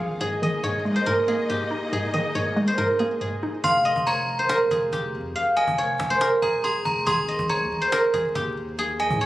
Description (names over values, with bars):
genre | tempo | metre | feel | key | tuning
hip hop, trap | 140 BPM | 4/4 | half-time | F minor | A4 = 440 Hz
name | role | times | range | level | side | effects
guzheng | melody | 0.0-9.3 s | G4 to F5 | -23 LUFS | equal | low-pass filter
hollow square pluck | accompaniment | 0.0-3.6 s | Ab2 to F5 | -27 LUFS | equal | chorus, low-pass filter
dark symphonic string section | sustained chords | 0.0-3.6 s | C3 to F5 | -32 LUFS | equal | none
long sustained 808-style bass | bass | 0.0-0.7, 3.6-9.3 s | Eb1 to Ab2 | -33 LUFS | equal | none
cajon | drums | 0.0-9.2 s | none | -33 LUFS | equal | none
metallic FM bell | second line | 3.6-9.3 s | Ab5 to C6 | -26 LUFS | right 1 dB | chorus, ping-pong delay
room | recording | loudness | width
small room ambience | recorded on a phone in the room, club reverb, vinyl crackle | -21 LUFS | side -15 dB against mid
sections
0.0-3.6 A section; 3.6-9.3 B section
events
kick muted 2.8-3.6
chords
0.2 Absus2; 3.6 Fm; 7.1 Absus2